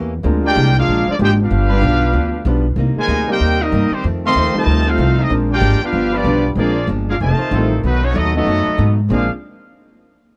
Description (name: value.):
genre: jazz.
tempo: 190 BPM.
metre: 4/4.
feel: swing 61% on 8ths.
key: Bb major.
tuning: A4 = 438 Hz.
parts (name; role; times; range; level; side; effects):
archtop guitar, miked and amplified; accompaniment; 0.0-9.3 s; F2 to G4; -27 LUFS; equal; none.
upright bass; bass; 0.0-9.3 s; F1 to Ab2; -19 LUFS; equal; none.
clear concert grand piano; accompaniment; 0.2-9.3 s; G3 to D5; -24 LUFS; equal; none.
clear trombone section; second line; 0.4-9.3 s; Bb2 to G4; -23 LUFS; equal; none.
bright trombone section; sustained chords; 0.4-2.1, 4.4-7.8 s; G3 to C5; -28 LUFS; equal; none.
bright trumpet section; melody; 0.5-9.3 s; A3 to C6; -22 LUFS; equal; none.
room: small room ambience.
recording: dry, close 1970s-style studio recording.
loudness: -16 LUFS.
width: mono.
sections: 0.0-7.8 A section; 7.8-9.1 B section; 9.1-10.4 C section.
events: none.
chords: 0.2 Bb7; 1.5 G7; 2.8 Cm7; 4.0 F7; 5.3 Bb7; 5.9 G7; 6.6 Bb7; 7.2 F7; 7.8 B7; 9.1 Bb9.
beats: | 0.24 0.56 0.87 1.19 | 1.50 1.82 2.13 2.45 | 2.77 3.08 3.40 3.72 | 4.03 4.35 4.67 4.98 | 5.30 5.62 5.93 6.25 | 6.57 6.88 7.20 7.51 | 7.83 8.15 8.46 8.78 | 9.10.